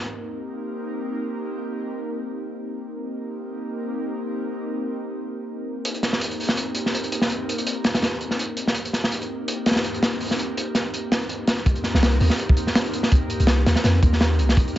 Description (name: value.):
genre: drum and bass, jungle.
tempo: 165 BPM.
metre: 4/4.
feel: swing 55% on 16ths.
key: C minor.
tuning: A4 = 440 Hz.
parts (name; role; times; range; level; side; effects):
airy breathy pad; sustained chords; 0.0-14.8 s; Bb3 to Bb4; -28 LUFS; equal; chorus.
crunchy breakbeat drum kit; drums; 5.8-14.8 s; hi-hat, kick drum, snare drum; -21 LUFS; equal; none.
long sustained 808-style bass; bass; 11.7-14.7 s; C2 to F2; -19 LUFS; equal; none.
room: light reverb, studio ambience.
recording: nothing above 7.7 kHz.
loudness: -21 LUFS.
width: side -13 dB against mid.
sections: 0.0-11.7 A section; 11.7-14.8 B section.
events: drop 11.7-14.8.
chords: 0.0 Cm7.